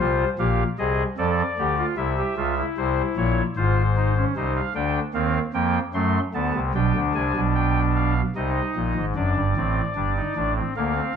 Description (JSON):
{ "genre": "classical, baroque-style 3-part fugue for pipe organ", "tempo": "75 BPM", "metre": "3/4", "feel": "straight", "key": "unclear", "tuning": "A4 = 440 Hz", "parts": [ { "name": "pipe organ, soft reed", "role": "solo", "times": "0.0-11.2 s", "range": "F#1 to C6", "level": "-20 LUFS", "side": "equal", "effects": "none" } ], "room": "wet stone room reverb, RT60 1.0 s", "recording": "dark, warm production", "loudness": "-21 LUFS", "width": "side -7 dB against mid", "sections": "0.0-9.2 A section; 9.2-11.2 B section", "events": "none", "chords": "0.0 Fm; 1.2 G5/F; 2.0 C; 3.6 Fm/Ab; 4.4 Cm; 6.0 D7/F#; 6.8 G/B; 8.4 Cm; 9.2 D7/F#" }